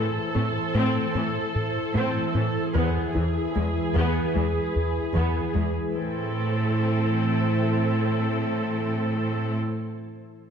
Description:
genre	cinematic, hybrid orchestral and electronic film score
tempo	75 BPM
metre	4/4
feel	straight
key	A harmonic minor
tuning	A4 = 441 Hz
part	rich symphonic viola section	accompaniment	0.0-9.6 s	E3 to A4	-29 LUFS	right 1 dB	none
part	glassy FM pad	sustained chords	0.0-9.6 s	E3 to C5	-29 LUFS	left 1 dB	ensemble chorus, built-in reverb
part	soft round pluck	arpeggios	0.0-5.8 s	E3 to A4	-32 LUFS	left 4 dB	chorus, ping-pong delay
part	rubbery square bass	riff	0.0-5.8 s	E2 to A2	-28 LUFS	left 1 dB	none
part	rich symphonic cello section	bass	0.0-9.6 s	E2 to A2	-28 LUFS	right 2 dB	none
room	wet scoring stage reverb, RT60 1.8 s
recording	dark, warm production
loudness	-22 LUFS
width	side -7 dB against mid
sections	0.0-5.9 A section; 5.9-9.1 B section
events	none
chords	0.0 Am; 2.7 E; 5.9 Am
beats	0.35 1.15 1.95 | 2.75 3.55 4.35 5.15 | 5.95 6.75 7.55 8.35

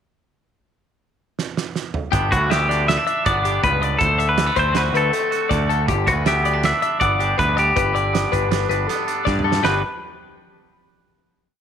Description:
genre	math rock and midwest emo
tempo	160 BPM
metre	5/4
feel	straight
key	G major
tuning	A4 = 441 Hz
part	loose indie drum kit	drums	1.4-9.7 s	hi-hat, kick drum, snare drum, splash cymbal, toms	-25 LUFS	right 5 dB	none
part	twangy electric guitar	accompaniment	2.1-9.8 s	D2 to F#4	-25 LUFS	right 13 dB	none
part	twelve-string electric guitar	arpeggios	2.1-9.8 s	G4 to F#5	-24 LUFS	left 14 dB	none
part	growling picked electric bass	bass	2.1-9.8 s	G1 to G2	-23 LUFS	equal	overdrive
part	clean electric guitar	melody	2.3-9.8 s	F#4 to E5	-21 LUFS	left 1 dB	spring reverb, slapback echo
room	light reverb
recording	1960s-style stereo with parts hard left and right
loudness	-17 LUFS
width	side -8 dB against mid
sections	0.3-2.1 pickup bar; 2.1-9.6 A section; 9.6-11.5 final chord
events	drum fill 1.4-2.1, 9.3-9.6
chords	0.3 N.C.; 2.1 G; 4.0 D9; 5.9 G; 7.8 Gadd9; 9.6 G5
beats	| 0.25 0.63 1.01 1.38 1.76 | 2.13 2.51 2.88 3.26 3.63 | 4.01 4.38 4.76 5.13 5.51 | 5.88 6.26 6.63 7.01 7.38 | 7.76 8.14 8.51 8.89 9.27 | 9.64

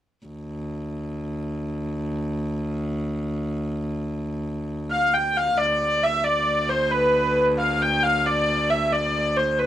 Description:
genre	medieval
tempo	90 BPM (dotted quarters)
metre	6/8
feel	straight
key	D dorian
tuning	A4 = 444 Hz
part	clear viola da gamba	drone	0.3-9.7 s	D2	-27 LUFS	equal	none
part	clear hurdy-gurdy	melody	4.9-9.7 s	B4 to G5	-20 LUFS	equal	none
room	small room ambience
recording	dry, close 1970s-style studio recording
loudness	-21 LUFS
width	side -12 dB against mid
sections	0.3-5.6 A section; 5.6-9.7 B section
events	none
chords	none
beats	| 0.26 0.93 | 1.59 2.26 | 2.92 3.59 | 4.26 4.92 | 5.59 6.26 | 6.92 7.59 | 8.25 8.92 | 9.59

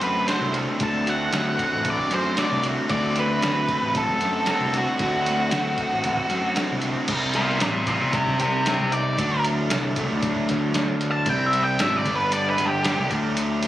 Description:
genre	indie rock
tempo	114 BPM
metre	4/4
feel	straight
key	unclear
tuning	A4 = 440 Hz
part	octave-fuzz lead guitar	melody	0.0-13.1 s	F#4 to A5	-24 LUFS	equal	distortion, tape echo
part	crunchy overdriven guitar	riff	0.0-13.7 s	G2 to F#4	-29 LUFS	left 5 dB	none
part	raw garage guitar	riff	0.0-13.7 s	G2 to F#4	-28 LUFS	right 5 dB	overdrive, lush chorus, tape echo
part	fuzz picked electric bass	bass	0.0-13.7 s	G1 to F#2	-27 LUFS	equal	overdrive
part	lo-fi sampler-style drum kit	drums	0.0-13.7 s	crash cymbal, hi-hat, kick drum, snare drum	-27 LUFS	equal	none
room	light reverb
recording	recorded on a phone in the room, studio reverb, compression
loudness	-20 LUFS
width	side -13 dB against mid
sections	0.0-7.1 A section; 7.1-13.7 B section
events	lead electric guitar solo 7.1-13.7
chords	0.0 D7; 7.1 Cm; 9.2 D; 11.3 C; 12.1 G; 13.1 D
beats	0.28 | 0.80 1.32 1.85 2.37 | 2.90 3.42 3.95 4.47 | 4.99 5.52 6.04 6.57 | 7.09 7.61 8.14 8.66 | 9.18 9.71 10.23 10.75 | 11.28 11.80 12.32 12.85 | 13.37

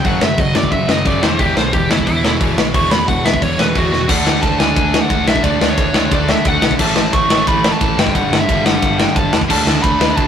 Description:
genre	punk rock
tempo	178 BPM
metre	4/4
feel	straight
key	unclear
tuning	A4 = 440 Hz
part	biting lead guitar	melody	0.0-10.3 s	E4 to C#6	-18 LUFS	equal	overdrive, tape echo
part	crunchy overdriven guitar	riff	0.0-10.3 s	E2 to D4	-23 LUFS	right 5 dB	none
part	overdriven electric guitar	riff	0.0-10.3 s	E2 to D4	-22 LUFS	left 4 dB	none
part	tight distorted guitar	riff	0.0-10.3 s	E2 to D4	-24 LUFS	equal	distortion
part	overdriven picked electric bass	bass	0.0-10.3 s	E1 to F#2	-24 LUFS	equal	none
part	big rock drum kit	drums	0.0-10.3 s	crash cymbal, kick drum, ride cymbal, snare drum	-15 LUFS	equal	none
room	moderate studio reverb, RT60 0.5 s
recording	rough rehearsal-room recording, tube saturation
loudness	-12 LUFS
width	side -8 dB against mid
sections	0.0-4.1 A section; 4.1-10.3 B section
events	lead electric guitar solo 0.0-4.1; drum fill 3.9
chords	0.0 F#5; 1.2 E5; 4.1 D; 6.8 A; 8.0 G5; 9.5 D5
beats	| 0.04 0.38 0.72 1.05 | 1.39 1.73 2.07 2.40 | 2.74 3.08 3.42 3.75 | 4.09 4.43 4.76 5.10 | 5.44 5.78 6.12 6.45 | 6.79 7.13 7.47 7.80 | 8.14 8.48 8.82 9.16 | 9.49 9.83 10.17

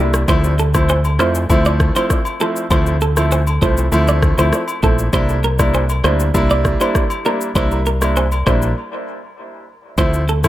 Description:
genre	afrobeats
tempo	99 BPM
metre	4/4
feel	straight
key	D minor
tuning	A4 = 439 Hz
part	bright grand piano	accompaniment	0.0-10.5 s	F3 to E4	-19 LUFS	equal	dub echo
part	clean electric guitar	riff	0.0-10.4 s	A4 to D5	-22 LUFS	right 3 dB	dub echo
part	deep dub fingered electric bass	bass	0.0-10.5 s	Bb1 to F2	-17 LUFS	equal	none
part	afro-pop drum kit	drums	0.1-10.5 s	kick drum, rim click, shaker	-19 LUFS	equal	none
part	agogo bells and woodblock	percussion	0.3-10.5 s	none	-27 LUFS	left 4 dB	dub echo
room	light reverb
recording	echo-heavy mix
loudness	-13 LUFS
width	side -14 dB against mid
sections	0.0-10.0 A section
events	break 0.0, 8.8-10.0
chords	0.3 Dm7; 5.1 C7; 10.0 Dm7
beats	| 0.28 0.89 1.50 2.10 | 2.71 3.31 3.92 4.53 | 5.13 5.74 6.34 6.95 | 7.56 8.16 8.77 9.38 | 9.98

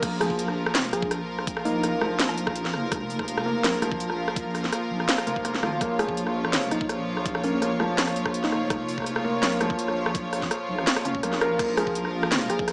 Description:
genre	half-time drum and bass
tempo	166 BPM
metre	4/4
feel	half-time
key	Bb minor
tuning	A4 = 440 Hz
part	rich studio string section	sustained chords	0.0-12.7 s	Bb2 to Db5	-32 LUFS	equal	sidechain pumping
part	felt-muted upright piano	arpeggios	0.0-12.7 s	F3 to Bb4	-33 LUFS	equal	tape echo
part	deep soft wobble bass	bass	0.0-12.7 s	F1 to Bb1	-36 LUFS	equal	chorus, tube saturation
part	drum and bass drum kit	drums	0.0-12.7 s	crash cymbal, hi-hat, rim click, snare drum	-29 LUFS	equal	none
part	electronic kick drum	drums	0.0-12.7 s	none	-36 LUFS	equal	none
part	soft struck synth lead	melody	0.2-2.2, 6.0-8.9, 11.8-12.7 s	Db4 to Ab4	-34 LUFS	equal	chorus, vintage 12-bit sampler grit, analog delay
room	light reverb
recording	dry, gritty hardware recording, small speaker sound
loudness	-26 LUFS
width	mono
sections	0.0-12.7 A section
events	drop 0.0-12.7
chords	0.0 Bb5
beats	| 0.03 0.39 0.75 1.11 | 1.47 1.83 2.20 2.56 | 2.92 3.28 3.64 4.00 | 4.37 4.73 5.09 5.45 | 5.81 6.17 6.53 6.89 | 7.26 7.62 7.98 8.34 | 8.70 9.06 9.43 9.79 | 10.15 10.51 10.87 11.23 | 11.59 11.96 12.32 12.68

